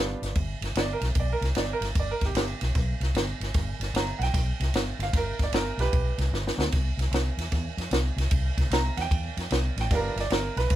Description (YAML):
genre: electric blues shuffle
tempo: 151 BPM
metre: 4/4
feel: swing 66% on 8ths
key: G mixolydian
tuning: A4 = 440 Hz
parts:
  - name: bright upright piano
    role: accompaniment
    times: 0.0-10.8 s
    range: G3 to Bb5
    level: -32 LUFS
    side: right 4 dB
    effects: none
  - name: vintage muted fingered electric bass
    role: bass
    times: 0.0-10.8 s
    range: G1 to F2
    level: -28 LUFS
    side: equal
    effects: none
  - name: compact cocktail drum kit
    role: drums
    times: 0.2-10.8 s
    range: hi-hat, kick drum, ride cymbal, snare drum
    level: -27 LUFS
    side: equal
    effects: none
room: light reverb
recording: band playing live in one room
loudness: -24 LUFS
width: side -13 dB against mid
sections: 0.4-10.8 A section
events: drum fill 6.3-6.7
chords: 0.4 G; 6.7 C; 9.9 G7